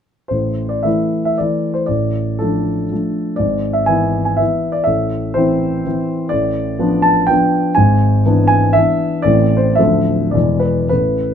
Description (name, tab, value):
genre	classical, romantic triple-time dance for piano with dotted rhythms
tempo	101-132 BPM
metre	3/4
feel	rubato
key	A minor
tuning	A4 = 440 Hz
part	warm concert grand piano	solo	0.3-11.3 s	D1 to A5	-13 LUFS	equal	none
room	light reverb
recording	minimal, uncompressed stereo recording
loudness	-13 LUFS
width	side -8 dB against mid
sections	0.3-11.3 A section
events	none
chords	0.3 A5; 1.9 Dm/A; 3.4 E/G#; 4.9 Am; 6.3 Bm7b5/A; 7.8 E7/G#; 9.3 Am; 9.8 Dm; 10.4 E7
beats	| 0.30 0.86 1.41 | 1.89 2.40 2.91 | 3.39 3.89 4.40 | 4.89 5.37 5.85 | 6.33 6.81 7.31 | 7.78 8.26 8.77 | 9.27 9.80 10.35 | 10.92